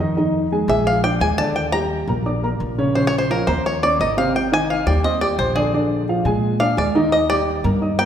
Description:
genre	jazz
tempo	172 BPM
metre	4/4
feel	straight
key	unclear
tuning	A4 = 441 Hz
part	dark upright piano	accompaniment	0.0-8.1 s	C3 to Eb6	-20 LUFS	right 1 dB	none
part	upright bass	bass	0.0-8.1 s	Ab1 to Bb2	-23 LUFS	equal	none
part	bluegrass banjo	melody	0.7-8.1 s	Ab4 to Bb5	-20 LUFS	left 1 dB	none
room	wet concert hall reverb, RT60 1.9 s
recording	recorded in a church or concert hall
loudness	-17 LUFS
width	side -9 dB against mid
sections	0.0-8.1 A section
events	five-string banjo solo 0.0-8.1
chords	0.2 Fm7; 0.9 Bb7; 1.6 Ebmaj7; 3.0 Bbmadd11; 3.6 Eb5; 4.3 Abmaj9; 5.7 Bb7; 7.1 Ebmaj7

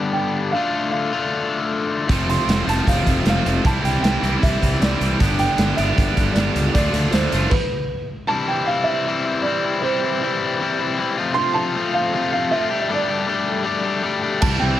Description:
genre	indie rock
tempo	155 BPM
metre	4/4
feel	straight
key	C major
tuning	A4 = 440 Hz
part	dark upright piano	melody	0.0-14.8 s	B4 to C6	-24 LUFS	right 2 dB	slapback echo, plate reverb
part	overdriven electric guitar	riff	0.0-14.8 s	F2 to G4	-21 LUFS	left 4 dB	none
part	scooped high-gain guitar	riff	2.1-7.5, 14.4-14.8 s	E3 to A4	-26 LUFS	right 16 dB	distortion, lush chorus, slapback echo
part	fuzz fingered electric bass	bass	2.1-7.5, 14.4-14.8 s	F1 to D2	-22 LUFS	equal	overdrive
part	raw garage drum kit	drums	2.1-7.6, 14.4-14.5 s	crash cymbal, hi-hat, kick drum, snare drum	-21 LUFS	right 1 dB	none
part	dark analog pad	sustained chords	8.3-14.8 s	E4 to A5	-33 LUFS	right 3 dB	chorus, tremolo, plate reverb
part	glockenspiel with soft plastic mallets	second line	14.4-14.8 s	G6 to A6	-32 LUFS	right 8 dB	slapback echo
part	tambourine	percussion	14.4-14.5 s	none	-36 LUFS	right 12 dB	none
room	light reverb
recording	none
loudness	-18 LUFS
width	side -12 dB against mid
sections	0.0-8.3 A section; 8.3-14.8 B section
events	stop 7.5-8.3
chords	0.0 G; 0.6 Dm; 2.1 F; 3.7 C; 5.2 G; 6.8 Dm; 7.5 N.C.; 8.3 C; 11.2 F; 12.7 Gsus2

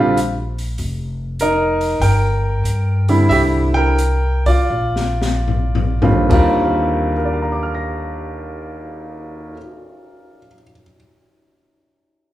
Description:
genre	jazz piano trio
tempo	70-99 BPM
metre	4/4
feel	swing 67% on 8ths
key	Eb major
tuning	A4 = 440 Hz
part	clear baby grand piano	melody	0.0-10.9 s	Eb2 to Bb6	-18 LUFS	right 1 dB	none
part	upright bass	bass	0.0-9.5 s	F1 to G2	-19 LUFS	equal	none
part	open jazz drum kit	drums	0.2-9.6 s	crash cymbal, cymbal swell, hi-hat, kick drum, snare drum, toms	-23 LUFS	left 2 dB	none
room	wet large studio reverb, RT60 1.1 s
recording	band playing live in one room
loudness	-15 LUFS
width	side -14 dB against mid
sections	0.0-6.3 A section; 6.3-9.7 B section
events	slowing down 0.8-6.3; drum fill 4.7-6.3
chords	0.0 Bb; 0.8 F7sus4; 2.0 Gm; 3.3 C7; 4.7 Bb; 6.3 Ebmaj9

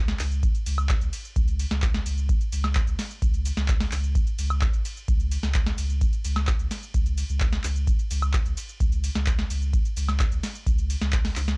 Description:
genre	acid house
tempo	129 BPM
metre	4/4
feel	straight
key	unclear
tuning	A4 = 440 Hz
part	warm sub bass	bass	0.0-11.6 s	G#1 to C#2	-26 LUFS	equal	tube saturation, sidechain pumping
part	booming analog drum machine	drums	0.1-11.6 s	handclaps, hi-hat, ride cymbal, shaker, snare drum, woodblock	-31 LUFS	equal	none
part	electronic kick drum	drums	0.4-11.2 s	none	-24 LUFS	equal	none
room	little or no reverb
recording	dry, gritty hardware recording, cassette tape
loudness	-22 LUFS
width	side -33 dB against mid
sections	0.0-11.6 A section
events	none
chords	none

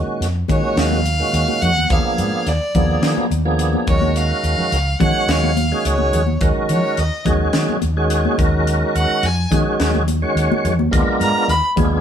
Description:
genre	electric jazz fusion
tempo	106 BPM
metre	4/4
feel	straight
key	unclear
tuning	A4 = 440 Hz
part	tonewheel organ	accompaniment	0.0-12.0 s	Bb2 to Db5	-20 LUFS	right 1 dB	slow rotary speaker, overdrive, chorus vibrato
part	mellow fretless electric bass	bass	0.0-12.0 s	Db2 to F3	-19 LUFS	equal	none
part	crisp fusion drum kit	drums	0.2-11.9 s	hi-hat, kick drum, snare drum	-22 LUFS	equal	none
part	clear violin	melody	0.5-11.7 s	Db5 to Cb6	-21 LUFS	right 1 dB	none
part	congas	percussion	0.5-11.9 s	none	-24 LUFS	left 2 dB	none
room	moderate studio reverb, RT60 0.6 s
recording	band playing live in one room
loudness	-15 LUFS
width	side -8 dB against mid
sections	0.0-12.0 A section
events	violin solo 0.0-12.0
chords	0.0 Gbmaj9/Eb; 1.9 Bb7b9/Eb; 3.9 Ebm11; 6.4 Gbadd9/Eb; 10.9 Bb7b9/Eb

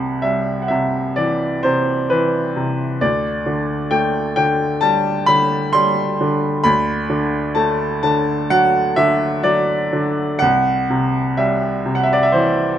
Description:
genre	classical, lyrical solo piano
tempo	60-68 BPM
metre	4/4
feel	rubato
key	C lydian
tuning	A4 = 441 Hz
part	bright baby grand piano	solo	0.0-12.8 s	C2 to C6	-15 LUFS	equal	none
room	light reverb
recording	close, detailed microphones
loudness	-15 LUFS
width	side -10 dB against mid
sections	0.0-12.8 A section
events	none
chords	0.0 C; 3.0 Dsus4; 6.6 Bm7/D; 10.4 C

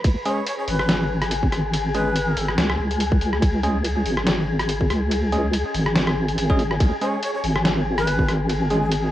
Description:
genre	deep dubstep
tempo	142 BPM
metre	4/4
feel	swing 55% on 16ths, half-time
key	unclear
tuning	A4 = 440 Hz
part	deep soft wobble bass	bass	0.0-9.1 s	G#1 to C#2	-22 LUFS	equal	chorus
part	electronic kick drum	drums	0.0-8.3 s	none	-19 LUFS	equal	cassette tape
part	trip hop sampler-style drum kit	drums	0.0-9.0 s	hi-hat, ride cymbal, rim click, snare drum	-26 LUFS	equal	cassette tape
part	wind-like tuned noise texture	texture	0.0-9.1 s	G#4	-28 LUFS	left 3 dB	built-in reverb, cassette tape
part	breathy bright shakuhachi	melody	0.3-2.5, 7.0-8.9 s	G#4 to C#5	-28 LUFS	left 2 dB	dub echo
part	bell-like tine electric piano	stabs	0.3-8.8 s	G#3 to G#4	-28 LUFS	right 1 dB	cassette tape, dub echo
room	light reverb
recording	home recording on cassette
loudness	-19 LUFS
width	side -13 dB against mid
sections	0.0-9.1 A section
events	none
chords	0.0 C#5

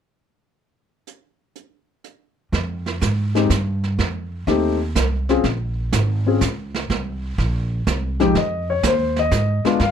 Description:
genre	jazz piano trio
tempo	124 BPM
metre	3/4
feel	swing 69% on 8ths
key	F minor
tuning	A4 = 440 Hz
part	jazz brush drum kit	drums	1.1-9.9 s	brushed snare drum, hi-hat, kick drum, snare drum	-25 LUFS	right 5 dB	none
part	upright bass	bass	2.5-9.9 s	Ab1 to Ab2	-22 LUFS	right 1 dB	none
part	warm grand piano	melody	3.3-9.9 s	F2 to F5	-18 LUFS	left 5 dB	none
room	little or no reverb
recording	none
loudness	-18 LUFS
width	side -8 dB against mid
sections	1.1-2.5 A section; 2.5-8.3 B section; 8.3-9.9 C section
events	none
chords	1.1 N.C.; 2.5 Fm; 4.0 F7; 5.4 Bbm7; 6.9 C5; 8.3 Fm7

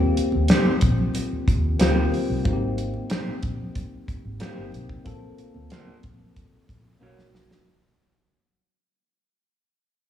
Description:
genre	lush 1970s-style soul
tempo	92 BPM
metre	4/4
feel	straight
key	unclear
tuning	A4 = 440 Hz
part	tine electric piano	accompaniment	0.0-7.7 s	Bb3 to A4	-27 LUFS	left 2 dB	phaser, slapback echo
part	vintage muted fingered electric bass	bass	0.0-7.5 s	G1 to Eb2	-25 LUFS	equal	none
part	damped 70s drum kit	drums	0.2-7.7 s	hi-hat, kick drum, snare drum	-23 LUFS	equal	slapback echo
part	congas	percussion	0.3-7.5 s	none	-32 LUFS	right 3 dB	slapback echo
part	electric guitar through a small old amp	riff	0.5-7.2 s	Eb4 to C#5	-30 LUFS	right 1 dB	slapback echo
room	light reverb, small room ambience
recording	live gig heard through the venue's PA, club reverb, studio ambience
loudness	-20 LUFS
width	side -10 dB against mid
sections	0.0-7.7 A section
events	fade-out 0.0-7.7; drum fill 7.0-7.7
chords	0.0 Eb6; 2.5 Abmaj7; 5.1 Bbmaj7sus2; 7.0 Bmaj9

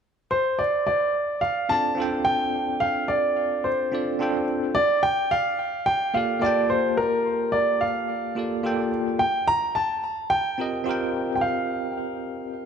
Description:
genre	chillout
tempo	108 BPM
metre	4/4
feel	swing 56% on 16ths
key	unclear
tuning	A4 = 439 Hz
part	warm grand piano	melody	0.3-12.7 s	Bb4 to Bb5	-23 LUFS	right 1 dB	ping-pong delay
part	bell-like tine electric piano	accompaniment	1.7-12.7 s	Bb3 to A5	-27 LUFS	moving between left 4 dB and right 3 dB	fast stereo tremolo, auto-pan, vintage 12-bit sampler grit, tape echo
room	moderate lush hall reverb, RT60 2.5 s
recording	none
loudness	-22 LUFS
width	side -7 dB against mid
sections	0.3-12.7 A section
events	none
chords	0.3 Dm7; 4.8 Gm9; 9.2 Eb69

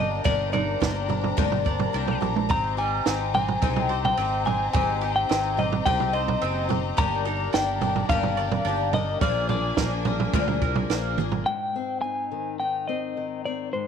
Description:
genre	indie folk with a building arrangement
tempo	107 BPM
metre	4/4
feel	straight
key	unclear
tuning	A4 = 436 Hz
part	clean electric guitar	melody	0.0-13.9 s	C5 to Bb5	-27 LUFS	left 2 dB	tremolo
part	picked twelve-string acoustic guitar	accompaniment	0.0-11.5 s	G2 to Ab4	-30 LUFS	left 15 dB	none
part	dark chamber string section	sustained chords	0.0-11.4 s	Eb3 to Bb5	-35 LUFS	left 2 dB	none
part	bowl-back mandolin	arpeggios	0.0-11.5 s	G3 to D5	-33 LUFS	right 11 dB	none
part	fingered electric bass	bass	0.0-11.4 s	Gb1 to D2	-30 LUFS	equal	none
part	compact cocktail drum kit	drums	0.3-11.5 s	kick drum, snare drum, toms	-27 LUFS	right 5 dB	none
part	fingerpicked steel-string acoustic guitar	accompaniment	11.5-13.9 s	Ab2 to Eb4	-32 LUFS	left 12 dB	none
room	light reverb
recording	1960s-style stereo with parts hard left and right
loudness	-22 LUFS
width	side -7 dB against mid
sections	0.0-11.5 A section; 11.5-13.9 B section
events	drum fill 10.9-11.5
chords	0.0 Ebmaj7/G; 2.5 Abmaj7; 7.0 Ebmaj7/G; 9.2 Bb7; 11.5 Abmaj7

